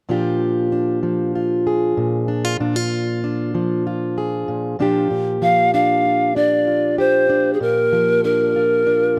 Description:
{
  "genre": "folk",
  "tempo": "96 BPM",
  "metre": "4/4",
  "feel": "straight",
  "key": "Bb mixolydian",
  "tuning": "A4 = 441 Hz",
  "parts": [
    { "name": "fingerpicked plugged-in steel-string acoustic guitar", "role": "accompaniment", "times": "0.1-9.2 s", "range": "Bb2 to Ab4", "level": "-22 LUFS", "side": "equal", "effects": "none" },
    { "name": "polished pan flute", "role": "melody", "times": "5.4-9.2 s", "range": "Ab4 to F5", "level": "-18 LUFS", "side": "equal", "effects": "none" }
  ],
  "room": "little or no reverb",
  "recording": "recorded outdoors, with no room sound",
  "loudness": "-19 LUFS",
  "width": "mono",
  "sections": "0.1-5.1 A section; 5.1-9.2 B section",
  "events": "none",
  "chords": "0.1 Bb6"
}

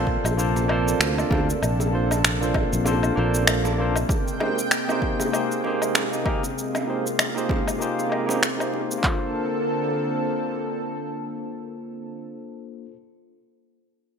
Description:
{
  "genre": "sunset chillout",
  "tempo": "97 BPM",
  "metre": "4/4",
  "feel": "swing 57% on 16ths",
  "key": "Bb major",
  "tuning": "A4 = 440 Hz",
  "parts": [
    { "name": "barky tine electric piano", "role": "accompaniment", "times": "0.0-13.0 s", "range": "Bb3 to Eb5", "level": "-27 LUFS", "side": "moving between left 4 dB and right 4 dB", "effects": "auto-pan, low-pass filter, digital delay" },
    { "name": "lush unison pad", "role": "sustained chords", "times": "0.0-12.3 s", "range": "C3 to G5", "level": "-27 LUFS", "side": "equal", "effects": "chorus" },
    { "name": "concert harp", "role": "arpeggios", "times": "0.0-1.3 s", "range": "none", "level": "barely audible", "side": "none", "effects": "none" },
    { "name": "fretless electric bass", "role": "bass", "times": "0.0-4.0 s", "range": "Bb1 to D2", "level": "-24 LUFS", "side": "equal", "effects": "ensemble chorus" },
    { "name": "deep house drum kit", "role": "drums", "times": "0.1-9.2 s", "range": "handclaps, kick drum", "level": "-25 LUFS", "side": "equal", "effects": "overdrive" },
    { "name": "electronic woodblock, shaker and finger snaps", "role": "drums", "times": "0.2-9.0 s", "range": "none", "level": "-25 LUFS", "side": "left 1 dB", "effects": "overdrive" },
    { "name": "bongos", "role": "percussion", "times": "0.3-8.9 s", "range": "none", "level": "-34 LUFS", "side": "right 3 dB", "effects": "none" }
  ],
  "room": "moderate lush hall reverb, RT60 2.2 s",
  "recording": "bright 1980s-style digital production",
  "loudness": "-21 LUFS",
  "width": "side -6 dB against mid",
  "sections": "0.0-9.0 A section; 9.0-11.5 B section",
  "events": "filter sweep on tine electric piano 0.0-9.0",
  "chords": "0.0 Bbmaj9; 4.1 Abmaj9; 9.0 Bbmaj9"
}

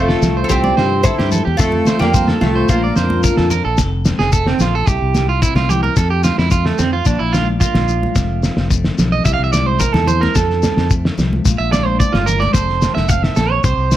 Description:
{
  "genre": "highlife guitar band",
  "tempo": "110 BPM",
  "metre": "4/4",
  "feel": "straight",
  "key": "F major",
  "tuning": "A4 = 438 Hz",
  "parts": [
    { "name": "oud", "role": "melody", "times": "0.0-3.5 s", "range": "A3 to C5", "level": "-17 LUFS", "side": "equal", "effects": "none" },
    { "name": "warm tenor saxophone", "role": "second line", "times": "0.0-3.5 s", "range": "A3 to E4", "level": "-27 LUFS", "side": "left 6 dB", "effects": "none" },
    { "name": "clean electric guitar", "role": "accompaniment", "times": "0.0-14.0 s", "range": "F2 to A4", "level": "-26 LUFS", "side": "left 4 dB", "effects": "lush chorus" },
    { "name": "electric guitar at the edge of break-up", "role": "arpeggios", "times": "0.0-14.0 s", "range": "A3 to F5", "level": "-19 LUFS", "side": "right 7 dB", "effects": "slapback echo" },
    { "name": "fingered electric bass", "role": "bass", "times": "0.0-14.0 s", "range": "F1 to G2", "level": "-19 LUFS", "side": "equal", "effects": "none" },
    { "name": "cloth-damped thuddy drum kit", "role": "drums", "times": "0.1-14.0 s", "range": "kick drum, snare drum", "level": "-18 LUFS", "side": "equal", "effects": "none" },
    { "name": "congas", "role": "percussion", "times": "0.2-14.0 s", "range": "none", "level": "-24 LUFS", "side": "left 1 dB", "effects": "none" },
    { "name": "shekere", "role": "percussion", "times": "0.2-14.0 s", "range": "none", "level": "-21 LUFS", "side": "left 4 dB", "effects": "none" }
  ],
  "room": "light reverb",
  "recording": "none",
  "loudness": "-13 LUFS",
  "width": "side -12 dB against mid",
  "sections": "0.0-3.8 A section; 3.8-14.0 B section",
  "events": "clean electric guitar solo 3.8-14.0",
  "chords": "0.5 C; 1.6 F; 2.7 Bb; 3.8 F; 4.9 C; 6.0 F; 7.1 Bb; 8.2 F; 9.3 C; 10.4 F; 11.4 Bb; 12.5 F"
}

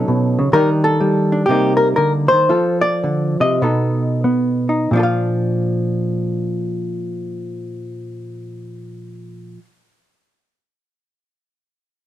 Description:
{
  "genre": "solo jazz",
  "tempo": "85-131 BPM",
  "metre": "4/4",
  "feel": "swing 66% on 8ths, rubato",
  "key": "Bb major",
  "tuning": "A4 = 440 Hz",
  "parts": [
    { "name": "hollow-body jazz guitar", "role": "solo", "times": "0.0-9.6 s", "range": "Bb2 to F5", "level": "-16 LUFS", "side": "equal", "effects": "none" }
  ],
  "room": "light reverb",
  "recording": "none",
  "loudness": "-15 LUFS",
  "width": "side -12 dB against mid",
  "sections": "0.0-4.9 A section; 4.9-10.3 B section",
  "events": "slowing down 0.5-4.9",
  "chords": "0.0 B9; 0.5 Ebmaj7; 1.5 Cm7; 2.5 F; 3.6 B7; 4.9 Bb"
}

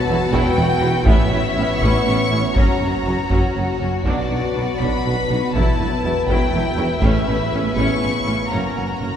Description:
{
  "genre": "cinematic, epic orchestral film score",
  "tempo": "80 BPM (dotted quarters)",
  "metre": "6/8",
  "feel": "straight",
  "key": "unclear",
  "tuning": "A4 = 440 Hz",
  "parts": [
    { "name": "rich studio violin section", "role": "melody", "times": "0.0-9.2 s", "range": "D5 to C#6", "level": "-25 LUFS", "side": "left 2 dB", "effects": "none" },
    { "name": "warm symphonic violin section", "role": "second line", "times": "0.0-9.2 s", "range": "E4 to C#5", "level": "-25 LUFS", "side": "left 2 dB", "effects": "none" },
    { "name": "mellow French horn section", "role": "sustained chords", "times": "0.0-9.2 s", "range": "C#3 to C#4", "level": "-26 LUFS", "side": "left 2 dB", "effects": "none" },
    { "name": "clear symphonic viola section", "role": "accompaniment", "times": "0.1-9.1 s", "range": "F#3 to E4", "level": "-26 LUFS", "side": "right 2 dB", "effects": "none" },
    { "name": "mellow tuba", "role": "bass", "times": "0.1-9.1 s", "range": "E1 to B1", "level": "-26 LUFS", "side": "right 2 dB", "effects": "none" },
    { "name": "warm symphonic cello section", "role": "bass", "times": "0.1-9.1 s", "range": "E2 to B2", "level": "-26 LUFS", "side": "right 2 dB", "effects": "none" },
    { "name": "warm symphonic double bass section", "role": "bass", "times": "0.1-9.1 s", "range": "E1 to B1", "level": "-26 LUFS", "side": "right 1 dB", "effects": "none" },
    { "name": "taiko ensemble", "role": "drums", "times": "0.3-8.2 s", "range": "none", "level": "-22 LUFS", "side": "equal", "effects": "none" },
    { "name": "timpani", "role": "percussion", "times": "2.6-3.3, 8.5-9.2 s", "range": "none", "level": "barely audible", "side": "none", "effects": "none" }
  ],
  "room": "wet church reverb, RT60 3.2 s",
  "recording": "recorded in a church or concert hall",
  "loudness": "-16 LUFS",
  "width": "side -9 dB against mid",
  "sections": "0.0-9.2 A section",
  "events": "none",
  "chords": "0.0 Emadd9; 1.1 Aadd9; 2.6 F#; 4.1 Bm; 5.5 Emadd9; 7.0 Aadd9; 8.5 F#"
}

